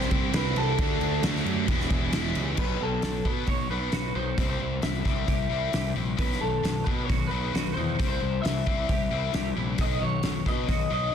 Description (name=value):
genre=quiet-loud alternative rock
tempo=133 BPM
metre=4/4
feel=straight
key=unclear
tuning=A4 = 440 Hz
part: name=electric guitar through a small old amp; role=melody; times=0.0-11.1 s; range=A4 to E5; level=-31 LUFS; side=left 1 dB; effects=lush chorus, slapback echo
part: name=dark chamber string section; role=sustained chords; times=0.0-2.6 s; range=C4 to A5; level=-44 LUFS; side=left 1 dB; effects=none
part: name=distorted electric guitar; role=riff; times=0.0-2.6 s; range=E2 to D4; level=-32 LUFS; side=right 15 dB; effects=distortion
part: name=high-gain distorted guitar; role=riff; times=0.0-11.1 s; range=B2 to F#4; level=-31 LUFS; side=left 11 dB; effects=distortion
part: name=fuzz picked electric bass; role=bass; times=0.0-11.1 s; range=E1 to B2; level=-31 LUFS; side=right 1 dB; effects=overdrive
part: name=loose indie drum kit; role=drums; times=0.0-10.8 s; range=crash cymbal, hi-hat, kick drum, snare drum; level=-29 LUFS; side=equal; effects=none
part: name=twangy electric guitar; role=arpeggios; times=2.6-11.1 s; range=B2 to G4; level=-38 LUFS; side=right 14 dB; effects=ensemble chorus
room=small room ambience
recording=dense, heavily limited modern master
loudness=-24 LUFS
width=side -8 dB against mid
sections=0.0-2.6 A section; 2.6-11.1 B section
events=none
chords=0.0 C; 0.8 D; 1.7 E; 2.6 B; 4.4 C; 6.2 B; 8.0 C; 9.8 B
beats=0.33 | 0.78 1.23 1.68 2.13 | 2.58 3.03 3.48 3.93 | 4.38 4.83 5.28 5.73 | 6.18 6.64 7.09 7.54 | 7.99 8.44 8.89 9.34 | 9.79 10.24 10.69 11.14